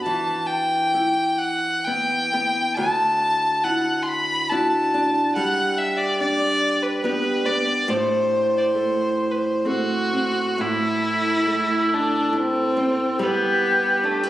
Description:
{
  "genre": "celtic folk, Celtic slow air",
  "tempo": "63-73 BPM",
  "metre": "3/4",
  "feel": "rubato",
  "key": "A dorian",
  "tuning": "A4 = 440 Hz",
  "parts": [
    { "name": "clear fiddle", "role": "melody", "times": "0.0-14.3 s", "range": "A3 to C6", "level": "-21 LUFS", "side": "equal", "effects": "none" },
    { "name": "nylon-string guitar", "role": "accompaniment", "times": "0.0-14.3 s", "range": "D2 to G4", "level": "-25 LUFS", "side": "right 1 dB", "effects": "none" },
    { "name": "bright wooden flute", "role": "second line", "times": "10.6-14.3 s", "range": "G4 to A4", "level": "-23 LUFS", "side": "equal", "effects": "none" }
  ],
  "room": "moderate scoring stage reverb, RT60 1.7 s",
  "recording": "recorded on a phone in the room, club reverb, compression",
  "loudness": "-19 LUFS",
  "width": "side -14 dB against mid",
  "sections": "0.0-10.6 A section; 10.6-14.3 B section",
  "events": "none",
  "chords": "0.1 Em; 2.8 Dadd9; 5.4 G; 7.9 Am; 13.2 Em/G"
}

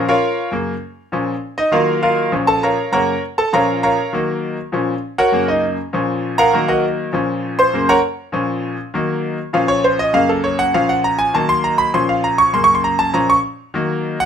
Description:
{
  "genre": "latin",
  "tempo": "200 BPM",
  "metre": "4/4",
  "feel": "straight",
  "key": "Bb harmonic minor",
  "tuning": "A4 = 440 Hz",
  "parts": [
    { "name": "bright concert grand piano", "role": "solo", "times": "0.0-14.3 s", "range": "Gb2 to Db6", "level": "-15 LUFS", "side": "equal", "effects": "slapback echo" }
  ],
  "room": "light reverb",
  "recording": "close, detailed microphones",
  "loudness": "-15 LUFS",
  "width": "side -8 dB against mid",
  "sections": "0.0-14.3 A section",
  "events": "grand piano solo 0.0-14.3",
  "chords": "0.0 Bbm; 0.5 Gb; 1.1 Bbm; 1.7 Ebmadd9; 2.3 Bbm; 2.9 Gb; 3.5 Bbm; 4.1 Ebm; 4.7 Bbm; 5.3 Gb; 5.9 Bbm; 6.5 Ebmadd9; 7.1 Bbm; 7.7 Gb; 8.3 Bbm; 8.9 Ebm; 9.5 Bbm; 10.1 Gb; 10.7 Bbm; 11.3 Ebm; 11.9 Bbm; 12.5 Gb; 13.1 Bbm; 13.7 Ebm"
}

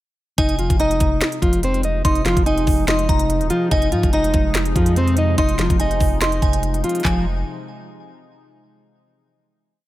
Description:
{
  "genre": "hip hop, trap",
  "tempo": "144 BPM",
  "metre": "4/4",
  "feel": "half-time",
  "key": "F minor",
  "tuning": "A4 = 440 Hz",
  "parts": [
    { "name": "nylon-string guitar", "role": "melody", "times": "0.4-7.2 s", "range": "F3 to Eb5", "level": "-20 LUFS", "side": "equal", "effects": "low-pass filter" },
    { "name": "glassy synth bell", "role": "second line", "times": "0.4-7.2 s", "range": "Ab5 to C6", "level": "-28 LUFS", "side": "right 2 dB", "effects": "chorus, phaser, ping-pong delay" },
    { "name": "warm analog pad", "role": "sustained chords", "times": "0.4-7.2 s", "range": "C3 to Eb4", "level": "-28 LUFS", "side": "left 1 dB", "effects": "chorus" },
    { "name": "long sustained 808-style bass", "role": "bass", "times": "0.4-7.4 s", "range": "Eb1 to Ab2", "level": "-22 LUFS", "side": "equal", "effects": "none" },
    { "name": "trap drum kit", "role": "drums", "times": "0.4-7.2 s", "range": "handclaps, hi-hat, kick drum, snare drum", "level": "-20 LUFS", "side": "equal", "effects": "none" }
  ],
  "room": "little or no reverb",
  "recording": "none",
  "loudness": "-16 LUFS",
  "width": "side -15 dB against mid",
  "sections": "0.4-7.0 hook; 7.0-8.7 final chord",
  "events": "none",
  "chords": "0.4 Fm7"
}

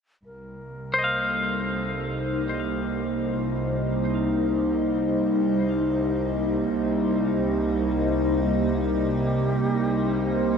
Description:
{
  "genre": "ambient",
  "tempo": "free time",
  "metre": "none",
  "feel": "none",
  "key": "C minor",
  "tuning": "A4 = 441 Hz",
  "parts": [
    { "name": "dark symphonic cello section", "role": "bass", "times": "0.2-10.6 s", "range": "C2", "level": "-31 LUFS", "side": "left 1 dB", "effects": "none" },
    { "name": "mellow reedy alto flute", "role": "melody", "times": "0.3-10.6 s", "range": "Eb4 to Bb4", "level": "-37 LUFS", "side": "left 1 dB", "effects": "ping-pong delay" },
    { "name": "evolving wavetable pad", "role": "sustained chords", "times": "0.7-10.6 s", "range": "C3 to C5", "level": "-24 LUFS", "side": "equal", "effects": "chorus, built-in reverb, phaser" },
    { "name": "clean electric guitar", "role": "arpeggios", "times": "0.9-4.2 s", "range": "C5 to F5", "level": "-28 LUFS", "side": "left 1 dB", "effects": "ping-pong delay" }
  ],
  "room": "wet huge ambient reverb, RT60 7.5 s",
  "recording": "in a vast, echoing space",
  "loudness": "-22 LUFS",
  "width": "side -6 dB against mid",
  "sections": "0.3-10.6 A section",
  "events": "fade-in on alto flute 0.3-10.6",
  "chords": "0.3 Cm7"
}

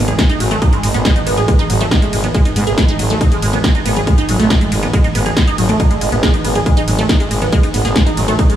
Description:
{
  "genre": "driving peak-time techno",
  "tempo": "139 BPM",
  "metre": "4/4",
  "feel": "straight",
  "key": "G# phrygian",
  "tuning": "A4 = 435 Hz",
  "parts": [
    { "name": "resonant blip pluck", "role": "riff", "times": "0.0-8.6 s", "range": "F#3 to G#4", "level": "-18 LUFS", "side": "right 1 dB", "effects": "phaser, tube saturation, sidechain pumping, diffuse ambient delay" },
    { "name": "growling FM bass", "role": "bass", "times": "0.0-8.3 s", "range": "G#1 to G#2", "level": "-18 LUFS", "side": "equal", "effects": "sidechain pumping" },
    { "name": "swarming drone", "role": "drone", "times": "0.0-8.6 s", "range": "G#2", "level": "-25 LUFS", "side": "equal", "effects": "none" },
    { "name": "techno drum kit", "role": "drums", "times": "0.1-8.6 s", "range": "hi-hat, ride cymbal, snare drum, toms", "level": "-20 LUFS", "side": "equal", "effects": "overdrive, sidechain pumping on hats, sidechain pumping on toms, sidechain pumping on cymbals" },
    { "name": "electronic kick drum", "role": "drums", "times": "0.2-8.5 s", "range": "none", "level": "-14 LUFS", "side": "equal", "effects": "overdrive" }
  ],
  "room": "light reverb, digital ambience",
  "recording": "small room ambience",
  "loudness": "-12 LUFS",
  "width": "side -11 dB against mid",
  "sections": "0.0-8.6 A section",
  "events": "none",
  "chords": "0.0 G#5"
}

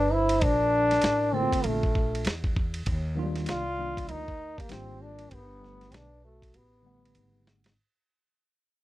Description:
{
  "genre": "hip hop, jazz-hop",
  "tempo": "98 BPM",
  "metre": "4/4",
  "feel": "swing 61% on 16ths",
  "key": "unclear",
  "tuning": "A4 = 440 Hz",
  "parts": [
    { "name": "warm trombone", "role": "melody", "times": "0.0-7.5 s", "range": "A3 to F4", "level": "-26 LUFS", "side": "equal", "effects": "none" },
    { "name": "vibraphone with medium mallets", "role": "second line", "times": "0.0-7.5 s", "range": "F4 to D5", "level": "-37 LUFS", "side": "right 2 dB", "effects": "none" },
    { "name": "upright bass", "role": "bass", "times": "0.0-7.7 s", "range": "G1 to E2", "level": "-33 LUFS", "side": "equal", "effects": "none" },
    { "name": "dusty soul sampler-style drum kit", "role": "drums", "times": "0.3-7.8 s", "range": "hi-hat, kick drum, ride cymbal, snare drum", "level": "-30 LUFS", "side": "equal", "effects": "none" },
    { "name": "tine electric piano", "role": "accompaniment", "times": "1.3-7.7 s", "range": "D3 to F#5", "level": "-36 LUFS", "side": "equal", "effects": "overdrive, fast stereo tremolo" }
  ],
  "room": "light reverb",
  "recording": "dry, close 1970s-style studio recording",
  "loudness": "-24 LUFS",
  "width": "side -16 dB against mid",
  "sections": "0.0-7.8 A section",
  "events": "fade-out 0.0-7.8; drum fill 6.5-7.8",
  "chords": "0.4 Bbmaj9; 2.9 Ebmaj9; 5.3 Gmaj9"
}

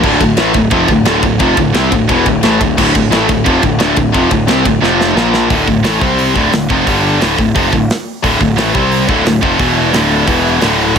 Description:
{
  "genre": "heavy metal",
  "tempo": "176 BPM",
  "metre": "4/4",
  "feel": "straight",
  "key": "D minor",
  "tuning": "A4 = 440 Hz",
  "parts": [
    { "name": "raw garage guitar", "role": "riff", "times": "0.0-5.5 s", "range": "D2 to C4", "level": "-17 LUFS", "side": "equal", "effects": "overdrive" },
    { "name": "scooped high-gain guitar", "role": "riff", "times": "0.0-11.0 s", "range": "D2 to C4", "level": "-14 LUFS", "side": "right 10 dB", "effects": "distortion" },
    { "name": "tight distorted guitar", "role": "riff", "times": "0.0-11.0 s", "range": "D2 to C4", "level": "-15 LUFS", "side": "left 10 dB", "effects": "distortion" },
    { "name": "fuzz picked electric bass", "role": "bass", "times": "0.0-11.0 s", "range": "D1 to C2", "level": "-18 LUFS", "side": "equal", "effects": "overdrive" },
    { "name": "tight metal drum kit", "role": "drums", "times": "0.0-11.0 s", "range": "crash cymbal, hi-hat, kick drum, ride cymbal, snare drum", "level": "-17 LUFS", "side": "right 1 dB", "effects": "none" }
  ],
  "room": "light reverb, studio ambience",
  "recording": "none",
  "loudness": "-9 LUFS",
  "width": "side -7 dB against mid",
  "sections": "0.0-5.5 A section; 5.5-11.0 B section",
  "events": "drum fill 4.8-5.5",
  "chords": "0.0 Dm; 4.8 F5; 5.2 Bb5; 5.5 D5; 6.0 C5; 6.4 Dm; 6.9 G5; 7.2 Dm; 8.7 C5; 9.1 Dm; 9.6 E5; 9.9 D5; 10.3 E5"
}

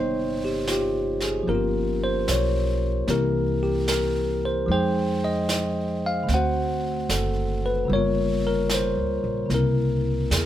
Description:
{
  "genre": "jazz ballad",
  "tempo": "75 BPM",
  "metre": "4/4",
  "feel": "swing 67% on 8ths",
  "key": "unclear",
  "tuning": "A4 = 441 Hz",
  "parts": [
    { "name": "bell-like tine electric piano", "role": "accompaniment", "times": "0.0-10.5 s", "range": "C3 to G5", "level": "-23 LUFS", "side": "left 1 dB", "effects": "none" },
    { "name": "upright bass", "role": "bass", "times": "0.0-10.5 s", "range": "F#1 to F2", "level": "-27 LUFS", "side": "right 1 dB", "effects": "none" },
    { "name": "jazz brush drum kit", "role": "drums", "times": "0.7-10.5 s", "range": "brushed snare drum, hi-hat, snare drum", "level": "-31 LUFS", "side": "right 2 dB", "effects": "none" }
  ],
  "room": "light reverb",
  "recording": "none",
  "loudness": "-22 LUFS",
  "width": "side -12 dB against mid",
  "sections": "0.0-10.5 A section",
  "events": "none",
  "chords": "0.0 Cm7; 1.5 Gm7b5; 3.1 C7; 4.7 Fm9; 6.3 D7; 7.9 Gm7b5; 9.5 C7b9"
}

